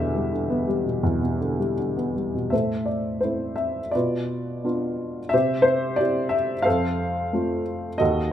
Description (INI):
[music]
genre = classical, lyrical solo piano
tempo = 78-90 BPM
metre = 4/4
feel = rubato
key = A minor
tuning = A4 = 440 Hz
[part]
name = dark upright piano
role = solo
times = 0.0-8.3 s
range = D#2 to F5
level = -22 LUFS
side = equal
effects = none
[sound]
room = light reverb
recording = close, detailed microphones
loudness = -22 LUFS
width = side -10 dB against mid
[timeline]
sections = 0.0-2.5 A section; 2.5-8.3 B section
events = none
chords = 0.0 Em7; 2.5 Am; 3.9 Bdim; 5.3 C; 6.7 F